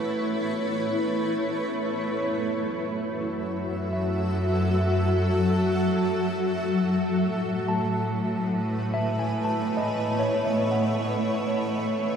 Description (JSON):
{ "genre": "ambient", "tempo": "72 BPM", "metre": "3/4", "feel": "straight", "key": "F# dorian", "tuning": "A4 = 440 Hz", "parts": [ { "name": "granular cloud pad", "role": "sustained chords", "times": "0.0-12.2 s", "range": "F#3 to E5", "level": "-25 LUFS", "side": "equal", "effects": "built-in reverb, shimmer reverb" }, { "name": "clear studio cello section", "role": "bass", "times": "0.0-12.2 s", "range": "F#2 to A2", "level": "-30 LUFS", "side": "equal", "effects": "none" }, { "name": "barky tine electric piano", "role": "arpeggios", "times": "2.2-12.2 s", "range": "C#5 to A5", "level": "-32 LUFS", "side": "equal", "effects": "medium stereo tremolo, tape echo, shimmer reverb" } ], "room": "wet huge ambient reverb, RT60 7.9 s", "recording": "dark, warm production", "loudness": "-23 LUFS", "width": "side -7 dB against mid", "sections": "0.0-2.2 A section; 2.2-12.2 B section", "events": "fade-in on tine electric piano 2.2-12.2", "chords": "0.0 A; 2.2 F#m7; 7.3 Amaj7", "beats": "0.53 1.38 | 2.24 3.09 3.93 | 4.77 5.61 6.44 | 7.27 8.10 8.94 | 9.78 10.62 11.47" }